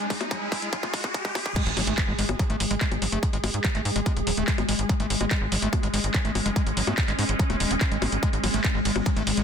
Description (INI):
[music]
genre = psychedelic trance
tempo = 144 BPM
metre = 4/4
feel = straight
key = unclear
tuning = A4 = 435 Hz
[part]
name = swarming drone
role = sustained chords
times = 0.0-9.4 s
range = G#3 to G#4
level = -30 LUFS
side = left 1 dB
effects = built-in reverb, sidechain pumping
[part]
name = overdriven acid bass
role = riff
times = 0.0-9.4 s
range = F#3 to D#4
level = -32 LUFS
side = equal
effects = distortion, auto-pan, sidechain pumping, digital delay
[part]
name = drum and bass drum kit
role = drums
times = 0.0-9.4 s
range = bongos, crash cymbal, handclaps, hi-hat, ride cymbal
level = -29 LUFS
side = left 2 dB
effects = none
[part]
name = riser and impact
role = sound effects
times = 0.0-3.2 s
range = none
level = -33 LUFS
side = equal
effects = none
[part]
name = airy breathy pad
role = texture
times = 0.0-1.6 s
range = D#4 to G#5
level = -41 LUFS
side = right 5 dB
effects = none
[part]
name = electronic kick drum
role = drums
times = 0.1-9.1 s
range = none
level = -26 LUFS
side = equal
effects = distortion, overdrive
[part]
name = tight sequencer bass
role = bass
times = 1.7-9.4 s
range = D#1 to G#2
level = -28 LUFS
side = equal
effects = none
[sound]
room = light reverb, digital ambience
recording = dense, heavily limited modern master, high-pass filter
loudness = -22 LUFS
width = side -7 dB against mid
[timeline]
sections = 0.0-1.6 A section; 1.6-9.4 B section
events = build-up 0.0-1.6; drum fill 0.0-1.6; riser 0.0-1.6; filter sweep on acid bass 0.0-1.6; drop 1.6-9.4; impact 1.6-3.2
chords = 0.0 G#5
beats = 0.31 0.73 1.14 | 1.56 1.98 2.39 2.81 | 3.23 3.64 4.06 4.48 | 4.89 5.31 5.73 6.14 | 6.56 6.98 7.39 7.81 | 8.23 8.64 9.06